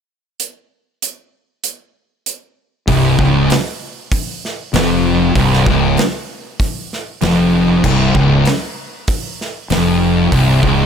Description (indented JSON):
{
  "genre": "stoner and doom metal",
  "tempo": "97 BPM",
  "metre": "4/4",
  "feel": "straight",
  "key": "unclear",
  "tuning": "A4 = 437 Hz",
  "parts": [
    { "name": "big rock drum kit", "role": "drums", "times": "0.4-10.8 s", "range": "crash cymbal, hi-hat, kick drum, snare drum", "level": "-20 LUFS", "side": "right 1 dB", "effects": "none" },
    { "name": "thick fuzz guitar", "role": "riff", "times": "2.9-10.9 s", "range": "C2 to F2", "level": "-15 LUFS", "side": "left 9 dB", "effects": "distortion" },
    { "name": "thick fuzz guitar", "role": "riff", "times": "2.9-10.9 s", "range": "C2 to F2", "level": "-16 LUFS", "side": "right 9 dB", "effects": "distortion" },
    { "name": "fuzz fingered electric bass", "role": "bass", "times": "2.9-10.9 s", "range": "C1 to F1", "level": "-19 LUFS", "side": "equal", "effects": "overdrive" }
  ],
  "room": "studio reverb",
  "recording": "none",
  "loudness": "-13 LUFS",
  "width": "side -7 dB against mid",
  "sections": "0.4-2.9 A section; 2.9-10.9 B section",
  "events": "none",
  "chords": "0.4 N.C.; 2.9 Dbmaj7/C"
}